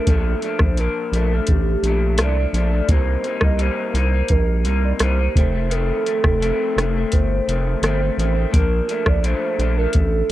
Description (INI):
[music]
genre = indie pop, bedroom pop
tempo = 85 BPM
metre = 4/4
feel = straight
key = Bb major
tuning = A4 = 440 Hz
[part]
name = hollow clarinet-like synth lead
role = melody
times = 0.0-10.3 s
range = G4 to Eb5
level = -24 LUFS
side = right 3 dB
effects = wide subtle chorus, slapback echo
[part]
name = electric guitar through a small old amp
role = accompaniment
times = 0.0-10.3 s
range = F2 to Eb4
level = -25 LUFS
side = left 6 dB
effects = analog chorus, warbly pitch drift
[part]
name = round analog bass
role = bass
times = 0.1-10.3 s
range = F1 to C2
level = -20 LUFS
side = equal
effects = none
[part]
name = soft vintage rhythm box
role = drums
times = 0.1-10.3 s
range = hi-hat, kick drum, rim click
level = -18 LUFS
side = equal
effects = none
[sound]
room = little or no reverb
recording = dry, close 1970s-style studio recording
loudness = -17 LUFS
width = side -14 dB against mid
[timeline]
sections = 0.0-10.3 A section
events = none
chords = 0.0 Bbmaj7; 2.9 Cm7; 5.4 F7; 8.5 Bbmaj7